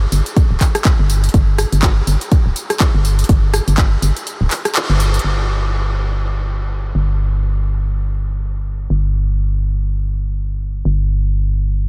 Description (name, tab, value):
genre	piano house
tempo	123 BPM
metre	4/4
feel	swing 58% on 16ths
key	unclear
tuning	A4 = 440 Hz
part	organ-like FM bass	bass	0.0-11.9 s	D1 to G1	-18 LUFS	equal	sidechain pumping
part	house drum kit	drums	0.1-5.3 s	handclaps, hi-hat, rim click, tambourine	-24 LUFS	equal	overdrive, low-pass filter on snare, low-pass filter on hats, low-pass filter on perc
part	electronic kick drum	drums	0.4-3.9 s	none	-15 LUFS	equal	overdrive
room	light reverb, digital ambience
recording	none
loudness	-17 LUFS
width	mono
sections	0.0-5.2 A section; 5.2-11.9 B section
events	kick drops out 4.3-5.2; band accent 4.8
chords	none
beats	0.36 0.85 | 1.34 1.83 2.32 2.80 | 3.29 3.78 4.27 4.75 | 5.24 5.73 6.22 6.71 | 7.19 7.68 8.17 8.66 | 9.14 9.63 10.12 10.61 | 11.10 11.59